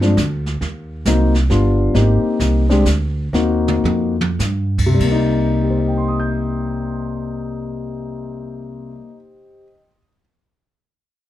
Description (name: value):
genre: jazz piano trio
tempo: 94-135 BPM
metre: 3/4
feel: swing 65% on 8ths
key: C minor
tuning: A4 = 440 Hz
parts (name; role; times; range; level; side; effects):
- dark grand piano; melody; 0.0-10.2 s; C3 to G6; -18 LUFS; left 3 dB; none
- upright bass; bass; 0.0-9.0 s; G1 to G2; -19 LUFS; right 1 dB; none
- jazz brush drum kit; drums; 0.0-5.2 s; brushed snare drum, crash cymbal, hi-hat, kick drum, snare drum, toms; -24 LUFS; right 3 dB; none
room: light reverb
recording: none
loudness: -15 LUFS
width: side -13 dB against mid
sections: 0.0-5.0 A section; 5.0-8.8 B section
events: slowing down 1.9-5.0; drum fill 3.3-4.4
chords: 0.2 N.C.; 0.6 Cm7b5; 1.5 G7; 1.9 Abmaj7; 2.9 N.C.; 3.3 Ebm69; 4.4 N.C.; 5.0 Cm7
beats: 0.17 | 0.61 1.05 1.50 | 1.94 2.39 2.85 | 3.33 3.84 4.39 | 5.00 5.63 6.27 | 6.91 7.54 8.18